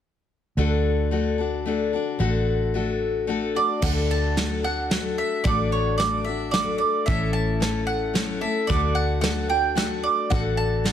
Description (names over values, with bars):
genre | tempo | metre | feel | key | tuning
honky-tonk and classic country | 111 BPM | 3/4 | straight | D major | A4 = 441 Hz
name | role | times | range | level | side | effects
picked steel-string acoustic guitar | accompaniment | 0.6-10.9 s | A2 to A4 | -25 LUFS | left 5 dB | none
vintage muted fingered electric bass | bass | 0.6-10.9 s | A1 to D2 | -26 LUFS | right 1 dB | none
mandolin | melody | 3.6-10.9 s | C#5 to A5 | -26 LUFS | right 5 dB | none
soft brush drum kit | drums | 3.8-10.9 s | crash cymbal, hi-hat, kick drum, snare drum | -27 LUFS | right 1 dB | none
room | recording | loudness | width
light reverb | heavily compressed radio sound | -21 LUFS | side -9 dB against mid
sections
0.6-3.8 A section; 3.8-10.9 B section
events
none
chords
0.6 D; 7.1 A; 8.7 D